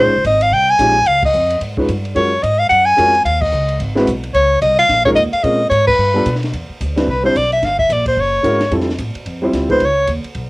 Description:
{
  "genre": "jazz, small-group swing and bop",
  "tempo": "220 BPM",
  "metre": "4/4",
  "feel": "swing 60% on 8ths",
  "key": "unclear",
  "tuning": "A4 = 440 Hz",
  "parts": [
    { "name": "breathy soprano saxophone", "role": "melody", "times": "0.0-10.1 s", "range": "Cb5 to Ab5", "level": "-13 LUFS", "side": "equal", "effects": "none" },
    { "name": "warm grand piano", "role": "accompaniment", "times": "0.0-9.8 s", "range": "G3 to C5", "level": "-17 LUFS", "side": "equal", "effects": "cassette tape" },
    { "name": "upright bass", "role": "bass", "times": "0.0-10.5 s", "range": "F1 to B2", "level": "-21 LUFS", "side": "equal", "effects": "none" },
    { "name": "compact cocktail drum kit", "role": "drums", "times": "0.2-10.4 s", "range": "crash cymbal, hi-hat, kick drum, ride cymbal, snare drum", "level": "-26 LUFS", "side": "equal", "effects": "cassette tape" }
  ],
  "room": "moderate studio reverb, RT60 0.5 s",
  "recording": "home recording on cassette",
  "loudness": "-12 LUFS",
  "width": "side -23 dB against mid",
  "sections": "0.0-6.5 A section; 6.5-10.5 B section",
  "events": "band accent 1.2, 3.4, 5.8; soprano saxophone solo 6.5-10.5",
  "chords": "0.0 Bbm11; 1.1 Db; 2.2 Gbmaj7; 3.2 Dbadd9; 3.8 Ab7alt; 4.3 Db69; 5.4 Bbm9; 6.0 G7; 6.5 Cmaj9; 7.6 Gm; 8.2 F#9; 8.7 Fmaj7; 9.8 Dbsus2"
}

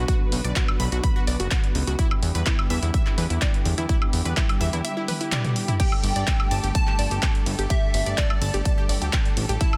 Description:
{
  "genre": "progressive house",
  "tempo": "126 BPM",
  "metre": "4/4",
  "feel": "straight",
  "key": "G major",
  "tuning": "A4 = 439 Hz",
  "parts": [
    { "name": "muted chamber string section", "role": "sustained chords", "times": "0.0-9.8 s", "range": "C#3 to B4", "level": "-34 LUFS", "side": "equal", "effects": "sidechain pumping" },
    { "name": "unison pluck", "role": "arpeggios", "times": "0.0-9.7 s", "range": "E4 to E6", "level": "-34 LUFS", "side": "equal", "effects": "sidechain pumping, dub echo" },
    { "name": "fat analog bass", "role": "bass", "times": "0.0-9.6 s", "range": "F#1 to E2", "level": "-27 LUFS", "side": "equal", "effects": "sidechain pumping" },
    { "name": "big-room dance drum kit", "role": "drums", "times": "0.1-9.8 s", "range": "crash cymbal, handclaps, hi-hat, ride cymbal, toms, woodblock", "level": "-31 LUFS", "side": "equal", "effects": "none" },
    { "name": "electronic kick drum", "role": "drums", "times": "0.1-9.7 s", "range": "none", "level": "-25 LUFS", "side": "equal", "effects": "none" },
    { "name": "plucky unison lead", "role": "melody", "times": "5.8-9.8 s", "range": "D5 to A5", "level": "-33 LUFS", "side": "equal", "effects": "dub echo" }
  ],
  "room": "little or no reverb",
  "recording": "dense, heavily limited modern master",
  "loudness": "-23 LUFS",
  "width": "mono",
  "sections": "0.0-9.8 A section",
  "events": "drum fill 5.1-5.8",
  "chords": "0.0 Bm; 2.0 Em7; 5.8 Gsus2"
}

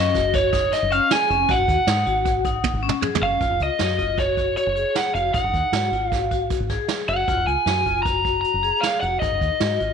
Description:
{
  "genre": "progressive instrumental, band music in an uneven meter",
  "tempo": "155 BPM",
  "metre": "5/4",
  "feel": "straight",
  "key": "F# major",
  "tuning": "A4 = 440 Hz",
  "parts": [
    { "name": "lead guitar through a small cranked amp", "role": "melody", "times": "0.0-9.9 s", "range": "C#5 to A#5", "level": "-21 LUFS", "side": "right 1 dB", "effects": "overdrive" },
    { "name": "vibraphone with hard mallets", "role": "arpeggios", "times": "0.0-9.9 s", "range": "C#4 to G#4", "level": "-27 LUFS", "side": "left 12 dB", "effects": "none" },
    { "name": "deep dub fingered electric bass", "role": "bass", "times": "0.0-9.9 s", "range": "E#1 to G#2", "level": "-27 LUFS", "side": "equal", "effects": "none" },
    { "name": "vintage brush drum kit", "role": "drums", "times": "0.1-9.9 s", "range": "hi-hat, kick drum, snare drum, toms", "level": "-26 LUFS", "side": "right 4 dB", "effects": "none" }
  ],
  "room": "light reverb, studio reverb",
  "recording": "1960s-style stereo",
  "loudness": "-19 LUFS",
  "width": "side -7 dB against mid",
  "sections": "0.0-3.4 A section; 3.4-9.9 B section",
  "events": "drum fill 2.6-3.4",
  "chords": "0.0 F#sus2; 1.5 G#5; 3.4 F#sus2; 5.3 G#5; 7.3 F#maj9; 9.2 G#5"
}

